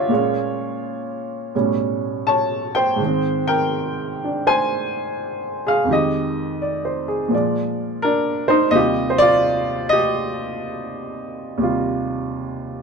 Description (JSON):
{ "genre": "solo jazz", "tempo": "84 BPM", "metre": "4/4", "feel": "swing 66% on 8ths, rubato", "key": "Eb major", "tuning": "A4 = 440 Hz", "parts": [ { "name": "warm baby grand piano", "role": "solo", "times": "0.0-12.8 s", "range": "Eb2 to A5", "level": "-18 LUFS", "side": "right 1 dB", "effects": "none" } ], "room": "light reverb", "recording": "close, detailed microphones", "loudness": "-18 LUFS", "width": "side -5 dB against mid", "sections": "0.0-12.8 A section", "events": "none", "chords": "0.1 Bbm7; 1.5 A9; 3.0 Abmaj7; 5.9 Fm9; 7.3 Bb7; 8.7 Eb69" }